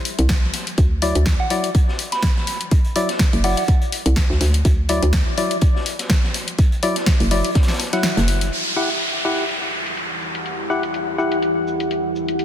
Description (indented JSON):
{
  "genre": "bass house",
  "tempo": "124 BPM",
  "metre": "4/4",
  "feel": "swing 55% on 16ths",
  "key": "E minor",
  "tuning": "A4 = 440 Hz",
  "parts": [
    { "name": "house drum kit", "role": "drums", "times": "0.1-12.4 s", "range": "cabasa, hi-hat, snare drum", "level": "-25 LUFS", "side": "left 1 dB", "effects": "low-pass filter on hats, small room ambience, low-pass filter on snare, low-pass filter on perc" },
    { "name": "raw garage drum kit", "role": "drums", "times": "0.1-8.5 s", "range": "hi-hat, snare drum", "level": "-32 LUFS", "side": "equal", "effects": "high-pass filter on hats, small room ambience, high-pass filter on snare, high-pass filter on room" },
    { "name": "hollow knocking FM bass", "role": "bass", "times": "0.2-8.5 s", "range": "F#1 to D2", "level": "-18 LUFS", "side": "equal", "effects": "tube saturation, sidechain pumping" },
    { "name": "electronic kick drum", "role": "drums", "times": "0.3-7.7 s", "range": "none", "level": "-17 LUFS", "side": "equal", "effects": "small room ambience" },
    { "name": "percussive organ stab", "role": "stabs", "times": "1.0-11.4 s", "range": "F#3 to F#5", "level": "-24 LUFS", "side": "left 2 dB", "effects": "chorus, sidechain pumping, ping-pong delay" },
    { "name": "soft synth bell", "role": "melody", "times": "1.4-3.6 s", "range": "F#5 to B5", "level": "-27 LUFS", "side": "right 4 dB", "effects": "chorus, ping-pong delay" },
    { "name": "deep dark ambient pad", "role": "sustained chords", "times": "9.9-12.4 s", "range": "E3 to F#5", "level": "-23 LUFS", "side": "left 1 dB", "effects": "chorus, built-in reverb, sidechain pumping" },
    { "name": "downlifter", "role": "sound effects", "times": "8.5-12.4 s", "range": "none", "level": "-24 LUFS", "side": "equal", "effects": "none" }
  ],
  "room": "light reverb",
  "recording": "dense, heavily limited modern master",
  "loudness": "-17 LUFS",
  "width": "side -10 dB against mid",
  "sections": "0.0-8.5 A section; 8.5-12.4 B section",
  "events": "filter sweep on synth stab 0.0-8.5; kick drops out 8.0-8.5",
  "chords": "0.0 N.C.; 0.8 Dadd9; 8.5 Emadd9"
}